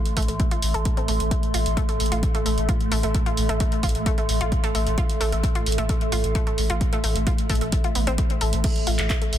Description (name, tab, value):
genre	driving peak-time techno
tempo	131 BPM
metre	4/4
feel	straight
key	A minor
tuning	A4 = 438 Hz
part	swarming drone	drone	0.0-9.4 s	A2 to A3	-31 LUFS	equal	built-in reverb, sidechain pumping
part	warbly tape-like pad	texture	0.0-9.4 s	A4 to C6	-30 LUFS	right 1 dB	chorus, built-in reverb, sidechain pumping
part	punchy analog drum machine	drums	0.1-9.4 s	crash cymbal, handclaps, hi-hat	-30 LUFS	right 1 dB	none
part	analog pluck	riff	0.2-9.2 s	A3 to A4	-30 LUFS	left 1 dB	chorus, sidechain pumping, ping-pong delay
part	saturated sub bass	bass	0.2-9.4 s	A1	-25 LUFS	equal	overdrive, sidechain pumping, low-pass filter
part	electronic kick drum	drums	0.2-9.2 s	none	-23 LUFS	equal	none
room	digital ambience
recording	dense, heavily limited modern master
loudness	-20 LUFS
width	side -11 dB against mid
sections	0.0-9.4 A section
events	none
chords	0.0 Am